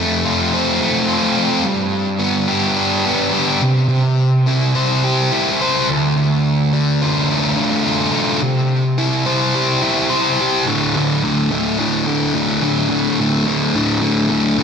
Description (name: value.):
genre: rock.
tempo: 107 BPM.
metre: 4/4.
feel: straight.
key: D dorian.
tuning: A4 = 438 Hz.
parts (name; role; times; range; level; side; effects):
sludgy distorted guitar; solo; 0.0-14.6 s; D2 to C5; -14 LUFS; equal; overdrive, tape echo.
room: wet concert hall reverb, RT60 2.4 s.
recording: big arena sound.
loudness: -14 LUFS.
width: side -6 dB against mid.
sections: 0.0-10.7 A section; 10.7-14.6 B section.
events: none.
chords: 0.0 F; 1.7 G; 3.6 C; 5.9 Dm; 8.4 C; 10.7 D5.